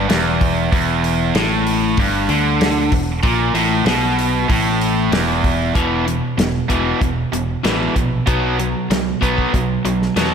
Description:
classic rock; 95 BPM; 4/4; straight; A4 = 441 Hz
overdriven electric guitar; riff; 0.0-10.3 s; E2 to B3; -20 LUFS; left 8 dB
tight distorted guitar; riff; 0.0-10.3 s; E2 to B3; -20 LUFS; right 9 dB; distortion, slapback echo
picked electric bass; bass; 0.0-10.3 s; E1 to E2; -22 LUFS; equal
damped 70s drum kit; drums; 0.1-10.3 s; hi-hat, kick drum, snare drum; -21 LUFS; equal
moderate scoring stage reverb, RT60 1.9 s, small room ambience; big arena sound; -15 LUFS; side -7 dB against mid
0.0-5.8 A section; 5.8-10.3 B section
0.0 E5; 8.3 B5
0.09 | 0.72 1.35 1.98 2.60 | 3.23 3.86 4.49 5.12 | 5.75 6.38 7.01 7.64 | 8.27 8.90 9.53 10.16

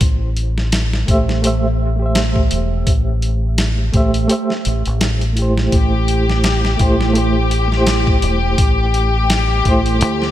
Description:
trip hop; 84 BPM; 4/4; swing 57% on 16ths; A4 = 444 Hz
reed electric piano; accompaniment; 0.0-10.2 s; A3 to E5; -20 LUFS; right 1 dB; fast tremolo, tape echo
deep dub fingered electric bass; bass; 0.0-10.3 s; E1 to D2; -17 LUFS; equal
boom bap sampler-style drum kit; drums; 0.0-10.3 s; hi-hat, kick drum, snare drum; -18 LUFS; equal
rich studio string section; sustained chords; 5.7-10.3 s; G4; -20 LUFS; left 5 dB
light reverb; -13 LUFS; side -13 dB against mid
0.0-10.3 A section
0.0 C; 5.7 Am7
| 0.01 0.72 1.44 2.15 | 2.87 3.58 4.30 5.01 | 5.72 6.44 7.15 7.87 | 8.58 9.30 10.01

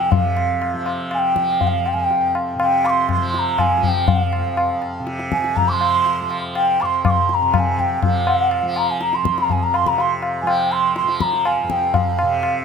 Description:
indian classical, Hindustani; 122 BPM; 4/4; straight; F raga kafi; A4 = 441 Hz
mellow bansuri; melody; 0.0-12.6 s; F5 to D6; -19 LUFS; right 2 dB; tape echo
tanpura; drone; 0.0-12.6 s; F2 to F3; -26 LUFS; equal
tabla; percussion; 0.1-12.6 s; -21 LUFS; left 4 dB
light reverb; close, detailed microphones; -16 LUFS; side -6 dB against mid
0.1-12.6 A section
| 0.12 0.61 1.11 1.61 | 2.10 2.60 3.10 3.59 | 4.08 4.58 5.07 5.57 | 6.06 6.55 7.04 7.54 | 8.03 8.52 9.01 9.50 | 9.99 10.48 10.97 11.46 | 11.95 12.43

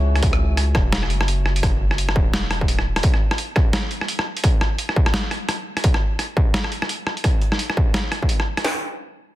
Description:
half-time drum and bass; 171 BPM; 4/4; swing 59% on 16ths, half-time; C# minor; A4 = 440 Hz
santur; arpeggios; 0.0-3.4 s; C#4 to G#4; -34 LUFS; equal; low-pass filter, tape echo
long sustained 808-style bass; bass; 0.0-3.0 s; D#1 to C#2; -21 LUFS; equal
boom bap sampler-style drum kit; drums; 0.2-8.6 s; hi-hat, rim click, snare drum; -23 LUFS; equal; soft clipping on snare
industrial drum kit; drums; 0.2-8.7 s; hi-hat, kick drum, snare drum; -19 LUFS; equal; distortion
digital ambience; dense, heavily limited modern master; -18 LUFS; side -15 dB against mid
0.0-8.6 A section
0.0 C#5; 8.6 N.C.
| 0.22 0.57 0.93 1.28 | 1.63 1.98 2.33 2.68 | 3.03 3.38 3.73 4.08 | 4.43 4.78 5.13 5.49 | 5.84 6.19 6.54 6.89 | 7.24 7.59 7.94 8.29 | 8.64

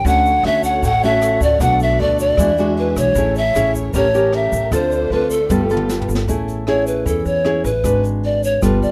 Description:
bossa nova; 154 BPM; 4/4; straight; A major; A4 = 440 Hz
breathy hollow pan flute; melody; 0.0-8.9 s; A4 to F#5; -19 LUFS; equal
nylon-string guitar; accompaniment; 0.0-8.9 s; A2 to B4; -22 LUFS; equal
upright bass; bass; 0.0-8.9 s; G1 to E2; -24 LUFS; equal
jazz brush drum kit; drums; 0.0-8.9 s; hi-hat, kick drum, rim click, snare drum, toms; -29 LUFS; equal
warm symphonic string section; sustained chords; 0.1-6.3 s; A3 to F#5; -32 LUFS; equal
tube shaker; percussion; 0.1-8.9 s; -38 LUFS; equal
small room reverb; rough home demo mix; -17 LUFS; mono
0.0-6.3 A section; 6.3-8.9 B section
drum fill 5.5-6.3; pan flute solo 6.3-8.9
0.0 Dmaj7; 1.6 Bm7; 2.4 E9; 3.2 Amaj7; 3.9 A7b9; 4.7 Dm7; 5.5 G9; 6.3 Amaj7; 7.8 G#m7b5
| 0.04 0.43 0.82 1.21 | 1.60 1.99 2.38 2.77 | 3.16 3.55 3.94 4.33 | 4.72 5.11 5.50 5.89 | 6.28 6.67 7.06 7.45 | 7.84 8.23 8.62

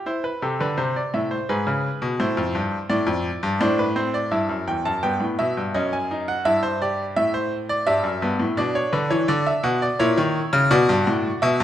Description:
classical, baroque-style 3-part fugue for grand piano; 84 BPM; 3/4; straight; A minor, E minor from 4.3 s; A4 = 440 Hz
bright grand piano; solo; 0.0-11.6 s; E2 to A5; -20 LUFS; equal
moderate recital hall reverb, RT60 1.4 s; -20 LUFS; side -11 dB against mid
0.1-4.3 A section; 4.3-11.6 B section
0.1 Am; 1.5 G#madd11; 2.2 Am; 4.3 Em; 5.7 G#7sus4/F#; 6.5 Em/G; 7.9 Em; 8.6 Bm; 10.0 A#dim; 10.7 Bm
| 0.05 0.77 1.48 | 2.18 2.89 3.60 | 4.32 5.03 5.74 | 6.45 7.17 7.87 | 8.58 9.28 9.99 | 10.71 11.41

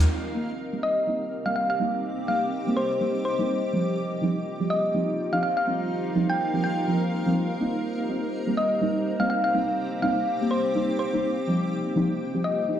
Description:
house; 124 BPM; 4/4; swing 58% on 16ths; A4 = 443 Hz
warbly tape-like pad; sustained chords; 0.0-12.8 s; Bb3 to F5; -33 LUFS; equal; chorus, built-in reverb, vintage 12-bit sampler grit
granular cloud pad; texture; 0.0-12.8 s; C4 to D6; -33 LUFS; right 1 dB; built-in reverb
deep mellow chord stab; stabs; 0.3-12.8 s; F3 to G4; -27 LUFS; equal; chorus, tape echo
thumb-piano-like synth pluck; melody; 0.8-12.6 s; C5 to G5; -26 LUFS; left 1 dB; chorus, cassette tape, tape echo
moderate plate reverb, RT60 1.8 s, digital ambience; played on a big sound system in a bare room, stone room reverb; -23 LUFS; side -10 dB against mid
0.1-12.8 A section
0.1 Eb69
| 0.11 0.59 1.07 1.56 | 2.04 2.52 3.01 3.49 | 3.98 4.46 4.94 5.43 | 5.91 6.40 6.88 7.36 | 7.85 8.33 8.81 9.30 | 9.78 10.27 10.75 11.23 | 11.72 12.20 12.69

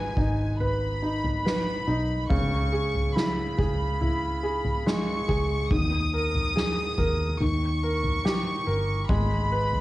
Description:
pop ballad; 71 BPM; 4/4; straight; G# minor; A4 = 440 Hz
warm studio violin section; second line; 0.0-9.8 s; G#5 to D#6; -31 LUFS; equal; cassette tape
felt-muted upright piano; accompaniment; 0.0-9.8 s; C#3 to B4; -29 LUFS; right 1 dB; cassette tape
vintage muted fingered electric bass; bass; 0.0-9.8 s; G1 to D#2; -29 LUFS; equal
soft-mallet drum kit; drums; 0.2-9.8 s; kick drum, snare drum, toms; -28 LUFS; equal; cassette tape
light reverb; home recording on cassette; -23 LUFS; side -16 dB against mid
0.0-9.8 A section
0.0 G#m; 2.3 C#m7; 5.7 D#sus4; 7.4 D#; 9.1 G#m
0.60 1.45 | 2.31 3.16 4.01 4.86 | 5.71 6.56 7.40 8.25 | 9.09

